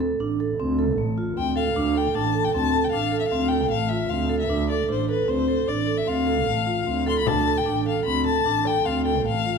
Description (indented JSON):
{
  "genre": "contemporary instrumental, chamber music in an uneven meter",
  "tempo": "153 BPM",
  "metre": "7/4",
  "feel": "straight",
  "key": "D dorian",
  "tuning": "A4 = 440 Hz",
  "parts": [
    { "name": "vibraphone with medium hard mallets", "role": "arpeggios", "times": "0.0-9.6 s", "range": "A3 to A4", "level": "-24 LUFS", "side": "right 2 dB", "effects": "none" },
    { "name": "rich double bass", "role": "bass", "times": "0.0-9.6 s", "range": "A1 to D2", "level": "-28 LUFS", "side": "right 3 dB", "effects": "none" },
    { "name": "rich violin", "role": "melody", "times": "1.4-9.6 s", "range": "B4 to C6", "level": "-25 LUFS", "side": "left 9 dB", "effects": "none" },
    { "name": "frame drum", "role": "percussion", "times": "7.3-8.8 s", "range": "none", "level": "-30 LUFS", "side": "left 10 dB", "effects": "none" }
  ],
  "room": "moderate concert hall reverb, RT60 1.9 s",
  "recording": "minimal, uncompressed stereo recording",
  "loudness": "-21 LUFS",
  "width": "side -5 dB against mid",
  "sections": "0.0-9.6 A section",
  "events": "none",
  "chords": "0.0 Dm7",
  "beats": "0.20 0.59 0.98 1.37 | 1.76 2.15 2.54 2.93 3.31 3.71 4.10 | 4.49 4.88 5.27 5.67 6.06 6.46 6.86 | 7.26 7.66 8.05 8.45 8.85 9.24"
}